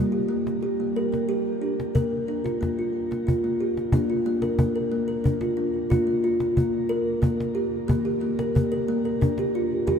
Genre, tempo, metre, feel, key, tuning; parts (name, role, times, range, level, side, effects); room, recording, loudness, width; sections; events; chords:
world meditative, meditative tuned percussion; 61 BPM (dotted quarters); 6/8; straight; Bb major; A4 = 440 Hz
kalimba; arpeggios; 0.0-10.0 s; Eb3 to Bb4; -23 LUFS; equal; diffuse ambient delay, shimmer reverb
cajon; percussion; 0.5-10.0 s; -27 LUFS; left 1 dB
wet cathedral reverb, RT60 4.9 s; in a vast, echoing space; -22 LUFS; side -7 dB against mid
0.0-3.9 A section; 3.9-10.0 B section
0.0 Gm; 1.9 Bb5; 3.9 Bb; 7.9 Eb